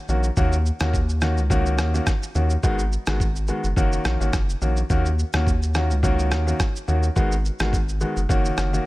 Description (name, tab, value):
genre	afrobeats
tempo	106 BPM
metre	4/4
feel	swing 55% on 16ths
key	Eb minor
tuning	A4 = 440 Hz
part	bright concert grand piano	accompaniment	0.1-8.9 s	Eb3 to Gb4	-25 LUFS	left 1 dB	none
part	round analog bass	bass	0.1-8.8 s	Gb1 to Eb2	-22 LUFS	equal	none
part	lo-fi sampler-style drum kit	drums	0.1-8.9 s	kick drum, rim click, shaker	-24 LUFS	equal	none
room	little or no reverb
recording	none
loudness	-19 LUFS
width	side -19 dB against mid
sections	0.0-8.9 A section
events	none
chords	0.4 Ebm7; 2.6 Abm7; 3.8 Gb6; 4.9 Ebm7; 7.2 Abm7; 8.3 Gb6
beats	| 0.37 0.94 1.50 2.07 | 2.63 3.20 3.77 4.33 | 4.90 5.46 6.03 6.60 | 7.16 7.73 8.29 8.86